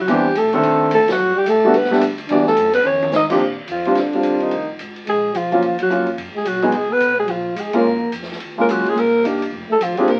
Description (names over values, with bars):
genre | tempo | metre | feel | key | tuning
jazz, small-group swing and bop | 216 BPM | 4/4 | swing 62% on 8ths | unclear | A4 = 440 Hz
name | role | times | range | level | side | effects
growling alto saxophone | melody | 0.0-10.2 s | D4 to Eb5 | -20 LUFS | equal | none
breathy trombone | second line | 0.0-10.2 s | D3 to Eb4 | -26 LUFS | equal | none
upright bass | bass | 0.0-10.2 s | D1 to Db3 | -41 LUFS | equal | none
warm grand piano | accompaniment | 0.1-10.1 s | Eb3 to A4 | -20 LUFS | equal | none
open jazz drum kit | drums | 0.1-10.2 s | crash cymbal, hi-hat, kick drum, ride cymbal, snare drum, toms | -32 LUFS | equal | none
room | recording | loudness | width
moderate studio reverb, RT60 0.6 s | very old 78 rpm record, vinyl crackle | -18 LUFS | mono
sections
0.0-3.4 A section; 3.4-10.2 B section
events
band accent 1.1, 5.8, 7.7; drum fill 2.9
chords
0.1 Am11; 0.6 D7b9; 1.2 Gmaj7; 2.3 Em9; 2.9 Fm; 3.4 Bb69; 4.5 Fm7; 5.1 Bb5; 5.6 Ebm7; 6.7 Db7; 7.9 Gbmaj7; 9.0 Cm9; 9.5 F69